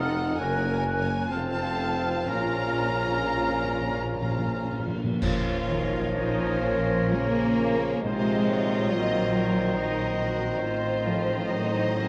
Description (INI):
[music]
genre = classical, slow romantic movement for symphony orchestra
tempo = 58-73 BPM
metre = 3/4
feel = rubato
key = Bb minor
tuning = A4 = 439 Hz
[part]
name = rich chamber violin section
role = melody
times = 0.0-12.1 s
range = C5 to Bb5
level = -37 LUFS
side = equal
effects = none
[part]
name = clear clarinet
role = second line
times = 0.0-12.1 s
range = A4 to C5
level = -36 LUFS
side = equal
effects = none
[part]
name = hollow flute section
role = second line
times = 0.0-12.1 s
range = Db5 to Gb6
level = -37 LUFS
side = equal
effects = none
[part]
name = rich symphonic violin section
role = second line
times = 0.0-12.1 s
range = F4 to F5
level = -40 LUFS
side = equal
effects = none
[part]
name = mellow bassoon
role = accompaniment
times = 0.0-12.1 s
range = Eb3 to Eb4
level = -36 LUFS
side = equal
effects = none
[part]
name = rich chamber viola section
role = accompaniment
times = 0.0-12.1 s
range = Bb3 to Bb4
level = -37 LUFS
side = equal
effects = none
[part]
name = mellow French horn section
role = sustained chords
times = 0.0-12.1 s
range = Gb2 to Eb4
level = -36 LUFS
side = equal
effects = none
[part]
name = clear tuba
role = bass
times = 0.0-5.0 s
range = F1 to Bb1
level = -38 LUFS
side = equal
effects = none
[part]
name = rich chamber double bass section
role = bass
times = 0.0-12.1 s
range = F1 to Bb1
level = -36 LUFS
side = equal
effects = none
[part]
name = rich symphonic cello section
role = bass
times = 0.0-12.1 s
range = F2 to Bb3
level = -32 LUFS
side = equal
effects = none
[part]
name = timpani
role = percussion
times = 0.0-9.3 s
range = F2 to Bb2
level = -37 LUFS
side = equal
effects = none
[part]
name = cymbal swell, clash cymbals and concert bass drum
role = percussion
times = 2.3-7.1 s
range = none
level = -36 LUFS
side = equal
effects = none
[part]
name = mellow trombone section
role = sustained chords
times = 5.2-12.1 s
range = Eb3 to Db4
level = -39 LUFS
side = equal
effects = none
[sound]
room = moderate concert hall reverb, RT60 1.9 s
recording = worn, warbling old tape, cassette tape, warbly pitch drift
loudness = -26 LUFS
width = mono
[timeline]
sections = 0.0-5.2 A section; 5.2-12.1 A section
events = timpani fill 2.3-5.2; band accent 5.2-6.2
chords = 0.4 Gb; 1.3 F; 2.3 Bbm; 8.0 Cm7b5/Bb; 10.6 Adim7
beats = 0.41 1.31 | 2.29 3.29 4.25 | 5.22 6.15 7.13 | 8.03 8.91 9.76 | 10.60 11.47